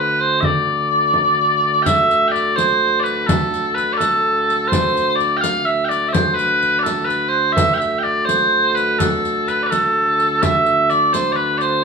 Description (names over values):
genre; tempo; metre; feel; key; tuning
medieval dance; 84 BPM (dotted quarters); 6/8; straight; unclear; A4 = 441 Hz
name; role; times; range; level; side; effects
mellow small bagpipes; melody; 0.0-11.8 s; A4 to G5; -15 LUFS; right 1 dB; none
hand-pumped harmonium; drone; 0.0-11.8 s; D2; -25 LUFS; right 1 dB; none
frame drum; percussion; 0.4-11.4 s; none; -23 LUFS; right 1 dB; none
riq; percussion; 1.9-11.7 s; none; -27 LUFS; left 4 dB; none
room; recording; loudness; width
wet stone room reverb, RT60 1.0 s; band playing live in one room, small room ambience; -14 LUFS; side -5 dB against mid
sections
0.0-1.9 A section; 1.9-11.8 A section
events
none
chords
none